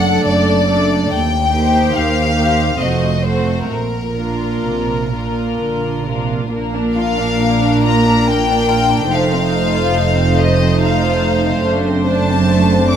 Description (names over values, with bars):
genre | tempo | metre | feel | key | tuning
classical, slow romantic movement for string orchestra | 61-75 BPM | 3/4 | rubato | Bb major | A4 = 438 Hz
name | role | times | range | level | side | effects
rich studio violin section | melody | 0.0-13.0 s | Bb4 to D6 | -19 LUFS | left 5 dB | none
rich studio violin section | second line | 0.0-13.0 s | A3 to D5 | -20 LUFS | left 1 dB | none
dark studio viola section | accompaniment | 0.0-13.0 s | A3 to Eb4 | -20 LUFS | right 2 dB | none
dark studio cello section | bass | 0.0-13.0 s | Eb2 to D3 | -19 LUFS | right 2 dB | none
warm studio double bass section | bass | 0.0-13.0 s | F1 to Eb2 | -20 LUFS | right 4 dB | none
room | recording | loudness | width
moderate scoring stage reverb, RT60 1.9 s | close, detailed microphones | -13 LUFS | side -8 dB against mid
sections
0.0-6.5 A section; 6.5-13.0 B section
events
none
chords
0.0 D/F#; 1.1 Cm7/Eb; 2.8 F7b9; 3.7 Bb; 9.1 F7; 11.7 D7/F#